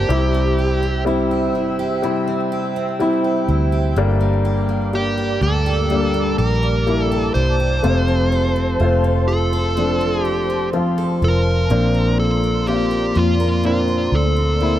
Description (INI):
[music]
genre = pop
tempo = 62 BPM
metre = 4/4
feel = straight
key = F major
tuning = A4 = 436 Hz
[part]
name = dark smooth lead guitar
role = melody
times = 0.0-14.8 s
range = F4 to C5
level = -22 LUFS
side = right 1 dB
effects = overdrive
[part]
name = clear grand piano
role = accompaniment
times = 0.0-14.8 s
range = G2 to F4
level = -21 LUFS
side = left 3 dB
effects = none
[part]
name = airy breathy pad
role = sustained chords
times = 0.0-14.8 s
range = Bb3 to E6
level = -26 LUFS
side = equal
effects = chorus
[part]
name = picked steel-string acoustic guitar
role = arpeggios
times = 0.0-14.8 s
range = G2 to Bb4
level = -27 LUFS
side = right 5 dB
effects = ping-pong delay
[part]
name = vintage muted fingered electric bass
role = bass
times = 0.0-14.8 s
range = F1 to F2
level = -19 LUFS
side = equal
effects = none
[sound]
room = light reverb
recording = none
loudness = -16 LUFS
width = side -12 dB against mid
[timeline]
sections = 0.0-14.8 A section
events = none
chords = 0.1 C; 4.0 Gm; 7.8 F; 11.7 Bbadd9